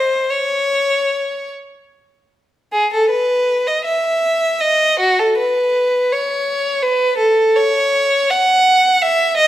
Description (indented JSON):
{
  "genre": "classical, baroque-style suite movement for unaccompanied violin",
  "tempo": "48-59 BPM (dotted quarters)",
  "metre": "6/8",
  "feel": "rubato",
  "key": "E major",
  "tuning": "A4 = 442 Hz",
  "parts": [
    { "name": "rich violin", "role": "solo", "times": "0.0-9.5 s", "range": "F#4 to F#5", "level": "-13 LUFS", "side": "equal", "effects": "none" }
  ],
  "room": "wet recital hall reverb, RT60 1.4 s",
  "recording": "none",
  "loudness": "-14 LUFS",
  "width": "side -13 dB against mid",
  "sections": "0.0-2.7 A section; 2.7-9.5 A section",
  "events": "none",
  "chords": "none",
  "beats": "| 0.29 1.50 | 2.72 3.83 | 5.00 6.11 | 7.19 8.33 | 9.38"
}